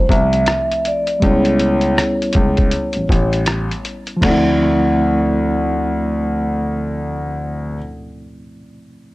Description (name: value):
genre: lo-fi hip hop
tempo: 80 BPM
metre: 4/4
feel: swing 61% on 16ths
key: D dorian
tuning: A4 = 440 Hz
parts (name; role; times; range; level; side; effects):
- vibraphone with soft mallets; melody; 0.0-7.8 s; C5 to E5; -22 LUFS; equal; low-pass filter, tape echo
- mellow reed electric piano; accompaniment; 0.0-9.1 s; F3 to E4; -20 LUFS; equal; fast tremolo, cassette tape, low-pass filter
- warm concert grand piano; bass; 0.0-7.8 s; A1 to D2; -19 LUFS; left 1 dB; none
- lo-fi sampler-style drum kit; drums; 0.1-4.4 s; crash cymbal, hi-hat, kick drum, rim click, snare drum; -19 LUFS; equal; none
room: digital ambience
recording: dry, gritty hardware recording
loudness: -14 LUFS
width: side -19 dB against mid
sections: 0.0-4.2 A section; 4.2-7.2 B section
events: none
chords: 0.0 Dm7; 1.2 A9/C#; 4.2 Dm7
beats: 0.47 | 1.22 1.97 2.72 3.47 | 4.22 4.97 5.72 6.47